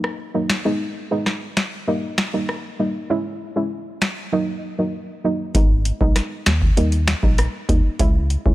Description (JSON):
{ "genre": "dancehall", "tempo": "98 BPM", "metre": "4/4", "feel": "straight", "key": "G# minor", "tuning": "A4 = 440 Hz", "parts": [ { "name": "soft round pluck", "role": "accompaniment", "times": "0.0-8.5 s", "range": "F#3 to E4", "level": "-23 LUFS", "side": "right 1 dB", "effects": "chorus, low-pass filter" }, { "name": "booming analog drum machine", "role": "drums", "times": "0.0-8.5 s", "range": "finger snaps, hi-hat, kick drum, rim click, snare drum", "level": "-20 LUFS", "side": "equal", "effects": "overdrive" }, { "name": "organ-like FM bass", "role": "bass", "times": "5.5-8.5 s", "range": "G#1 to D#2", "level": "-19 LUFS", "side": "equal", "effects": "none" } ], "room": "digital ambience", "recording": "none", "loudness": "-18 LUFS", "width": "side -16 dB against mid", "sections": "0.0-5.5 A section; 5.5-8.5 B section", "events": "filter sweep on synth pluck 0.0-5.5", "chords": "0.0 F#6; 0.6 G#m; 1.9 D#; 3.1 C#m; 4.3 F#6; 5.5 G#m; 6.8 D#; 8.0 C#m" }